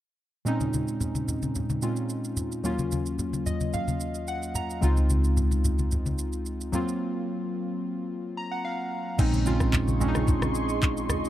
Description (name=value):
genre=amapiano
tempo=110 BPM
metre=4/4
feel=straight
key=unclear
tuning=A4 = 440 Hz
part: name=warm analog keys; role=accompaniment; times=0.5-11.3 s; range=Eb2 to Bb5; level=-28 LUFS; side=equal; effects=chorus
part: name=smooth R&B drum kit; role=drums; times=0.5-11.3 s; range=crash cymbal, handclaps, kick drum, rim click, shaker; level=-29 LUFS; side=equal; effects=none
part: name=congas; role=percussion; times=0.6-11.2 s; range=none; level=-31 LUFS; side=left 1 dB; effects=none
part: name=hollow-body short-scale fingered electric bass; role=bass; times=4.8-11.3 s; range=Bb1 to Db2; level=-26 LUFS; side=equal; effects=none
part: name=ethereal airy pad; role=sustained chords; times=9.7-11.3 s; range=Ab4 to Db6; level=-33 LUFS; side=right 1 dB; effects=ensemble chorus, built-in reverb, sidechain pumping
room=little or no reverb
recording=dark, warm production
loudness=-25 LUFS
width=side -13 dB against mid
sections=0.5-9.2 A section; 9.2-11.3 B section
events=synth keys fill 3.2-4.8, 8.1-9.2; break 7.0-9.2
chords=0.5 Bbm11; 2.6 Ebm9; 4.8 Dbmaj9; 6.7 Gbmaj7#11; 9.2 Bbm11